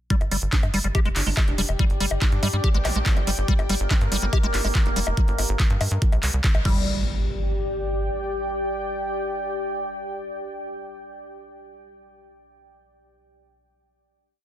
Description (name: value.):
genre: psychedelic trance.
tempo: 142 BPM.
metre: 4/4.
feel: straight.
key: G minor.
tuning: A4 = 440 Hz.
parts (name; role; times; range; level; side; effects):
liquid acid bass; riff; 0.1-7.0 s; G3 to G4; -28 LUFS; left 1 dB; chorus, auto-pan, sidechain pumping, tape echo.
drum and bass drum kit; drums; 0.1-6.7 s; bongos, crash cymbal, handclaps, hi-hat; -28 LUFS; left 1 dB; overdrive.
electronic kick drum; drums; 0.1-6.7 s; none; -20 LUFS; equal; overdrive.
deep dark ambient pad; texture; 0.9-11.0 s; G4 to G5; -30 LUFS; left 1 dB; chorus, built-in reverb, sidechain pumping.
tight sequencer bass; bass; 0.2-8.1 s; F1 to G2; -26 LUFS; equal; none.
formant-sweep wobble bass; second line; 0.5-4.7 s; C4 to D4; -40 LUFS; right 4 dB; lush chorus, sidechain pumping, high-pass filter, ping-pong delay.
zap and impact; sound effects; 2.8-3.0, 6.7-11.5 s; none; -31 LUFS; equal; none.
overtone-sweeping drone; sustained chords; 3.8-5.2 s; Bb3 to Bb4; -33 LUFS; right 2 dB; chorus, built-in reverb, sidechain pumping.
room: little or no reverb.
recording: dense, heavily limited modern master.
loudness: -21 LUFS.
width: side -12 dB against mid.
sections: 0.1-6.9 drop; 6.9-10.2 final note.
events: drop 0.1-6.9; band accent 6.4.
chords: 0.1 G5.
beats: | 0.10 0.53 0.95 1.37 | 1.79 2.22 2.64 3.06 | 3.48 3.91 4.33 4.75 | 5.17 5.60 6.02 6.44 | 6.86 7.29 7.71 8.13 | 8.55 8.98 9.40 9.82.